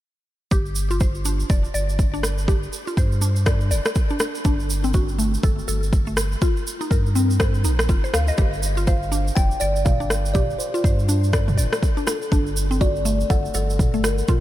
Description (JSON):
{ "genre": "afro house", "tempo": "122 BPM", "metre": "4/4", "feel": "swing 60% on 16ths", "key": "G minor", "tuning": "A4 = 438 Hz", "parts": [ { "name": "mallet-like synth pluck", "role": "arpeggios", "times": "0.5-14.4 s", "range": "A3 to F5", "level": "-27 LUFS", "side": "left 1 dB", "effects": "chorus, phaser, cassette tape, sidechain pumping, ping-pong delay" }, { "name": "warm sub bass", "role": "bass", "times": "0.5-14.2 s", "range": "F1 to G2", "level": "-23 LUFS", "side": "equal", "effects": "sidechain pumping" }, { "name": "electronic kick drum", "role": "drums", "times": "0.5-14.4 s", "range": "none", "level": "-20 LUFS", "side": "equal", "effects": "overdrive" }, { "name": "tube shaker", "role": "percussion", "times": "0.5-14.4 s", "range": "none", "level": "-32 LUFS", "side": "right 5 dB", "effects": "none" }, { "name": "deep house drum kit", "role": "drums", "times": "2.2-14.4 s", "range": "rim click, toms", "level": "-28 LUFS", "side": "equal", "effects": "overdrive" }, { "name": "kalimba", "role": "melody", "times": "8.9-14.4 s", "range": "A4 to G5", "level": "-27 LUFS", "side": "left 1 dB", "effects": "ping-pong delay" } ], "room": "light reverb", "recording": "none", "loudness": "-18 LUFS", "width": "side -14 dB against mid", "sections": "0.5-14.4 A section", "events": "none", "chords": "0.5 G5; 4.5 Gsus2; 6.4 F7sus4/G; 8.4 G5; 12.3 D5/G" }